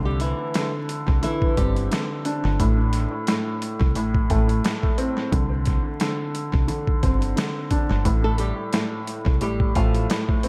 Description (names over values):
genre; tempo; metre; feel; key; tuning
hip hop, boom-bap hip-hop; 88 BPM; 4/4; swing 55% on 16ths; unclear; A4 = 441 Hz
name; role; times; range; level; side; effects
dark upright piano; accompaniment; 0.0-10.5 s; A2 to D4; -28 LUFS; equal; high-pass filter, low-pass filter, tape echo
deep dub fingered electric bass; bass; 0.0-10.1 s; G1 to C2; -25 LUFS; equal; none
flamenco guitar; melody; 0.1-1.9, 8.2-10.1 s; E3 to A4; -32 LUFS; equal; high-pass filter, low-pass filter, tape echo
boom bap sampler-style drum kit; drums; 0.2-10.5 s; hi-hat, kick drum, snare drum; -26 LUFS; equal; tape echo
room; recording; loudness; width
light reverb, studio reverb; echo-heavy mix, vinyl crackle; -23 LUFS; mono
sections
0.0-10.5 A section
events
none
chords
0.0 Cadd9; 2.6 Am; 5.3 Csus2; 8.1 A7(no3); 9.4 F/A